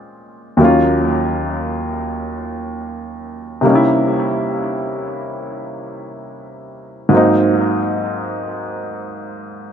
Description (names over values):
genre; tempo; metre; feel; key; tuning
R&B; free time; none; none; unclear; A4 = 439 Hz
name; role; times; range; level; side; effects
dark baby grand piano; solo; 0.0-9.7 s; Eb2 to F4; -16 LUFS; equal; dub echo
room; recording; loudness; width
moderate echo chamber reverb, RT60 1.7 s; echo-heavy mix; -15 LUFS; side -8 dB against mid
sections
0.0-9.7 A section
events
none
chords
0.0 Bbm9; 0.6 Ebm9; 3.6 C7b9; 7.1 Ab9